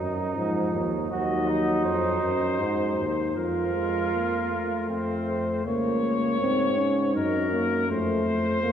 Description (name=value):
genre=classical, imitative canzona for brass ensemble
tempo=80 BPM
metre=3/4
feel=straight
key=Bb minor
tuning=A4 = 440 Hz
part: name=warm flugelhorn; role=second line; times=0.0-5.6 s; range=C4 to Gb4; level=-30 LUFS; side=right 4 dB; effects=none
part: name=mellow euphonium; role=accompaniment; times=0.0-8.7 s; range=F3 to Eb4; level=-27 LUFS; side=equal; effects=none
part: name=warm bass trombone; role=bass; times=0.0-8.7 s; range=Db2 to Ab2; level=-29 LUFS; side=equal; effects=none
part: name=warm trumpet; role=melody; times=1.1-8.7 s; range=Bb4 to Eb5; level=-29 LUFS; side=left 3 dB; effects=none
room=wet church reverb, RT60 3.4 s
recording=heard from further back in the room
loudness=-23 LUFS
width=side -8 dB against mid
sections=0.0-5.7 A section; 5.7-8.7 B section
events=none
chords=0.4 Fm/Ab; 1.1 Cdim/Eb; 3.4 Fsus4; 4.9 F; 5.7 Bbm/Db; 7.2 Ebm/Gb; 7.9 F